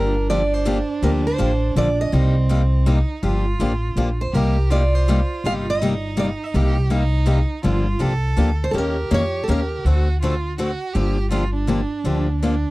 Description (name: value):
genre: acoustic string swing (jazz manouche)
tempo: 163 BPM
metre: 3/4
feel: swing 62% on 8ths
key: G minor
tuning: A4 = 441 Hz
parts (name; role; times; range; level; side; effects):
- picked steel-string acoustic guitar; melody; 0.0-9.8 s; A4 to F5; -24 LUFS; right 2 dB; none
- clear violin; second line; 0.0-12.7 s; C4 to A4; -28 LUFS; right 4 dB; none
- picked steel-string acoustic guitar; accompaniment; 0.0-12.5 s; C3 to Bb4; -22 LUFS; left 2 dB; none
- upright bass; bass; 0.0-12.6 s; G1 to F2; -20 LUFS; equal; none
room: little or no reverb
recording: dry, close 1970s-style studio recording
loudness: -18 LUFS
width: side -19 dB against mid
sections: 0.0-12.7 A section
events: none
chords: 0.0 Gm7; 2.1 Cm7; 3.2 Gm7; 4.3 Cm7; 7.6 Gm7; 8.7 Eb7; 9.8 D7#9; 11.0 Gm7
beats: 0.29 0.66 | 1.03 1.40 1.76 | 2.13 2.50 2.87 | 3.23 3.60 3.97 | 4.33 4.70 5.07 | 5.44 5.81 6.17 | 6.54 6.91 7.28 | 7.64 8.01 8.38 | 8.75 9.11 9.48 | 9.85 10.22 10.58 | 10.95 11.32 11.69 | 12.05 12.42